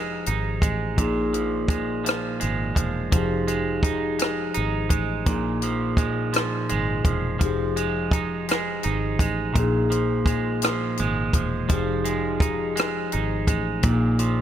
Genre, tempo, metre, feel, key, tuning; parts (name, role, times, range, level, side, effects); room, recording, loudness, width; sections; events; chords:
slow six-eight R&B; 56 BPM (dotted quarters); 6/8; straight; F minor; A4 = 439 Hz
electric guitar at the edge of break-up; second line; 0.0-14.4 s; Bb2 to Eb4; -27 LUFS; right 6 dB
bright tine electric piano; accompaniment; 0.0-14.4 s; Bb2 to Ab4; -27 LUFS; left 3 dB; overdrive, phaser
fingered electric bass; bass; 0.0-14.4 s; E1 to Bb1; -29 LUFS; equal
compact cocktail drum kit; drums; 0.3-14.4 s; hi-hat, kick drum, rim click; -24 LUFS; equal
light reverb, small room ambience; -21 LUFS; side -10 dB against mid
0.0-14.4 A section
0.0 Fm9; 1.0 Bb7sus4; 3.1 Fm9; 5.3 Bb7sus4; 7.4 Fm9; 9.6 Bb7sus4; 11.7 Fm9; 13.8 Bb7sus4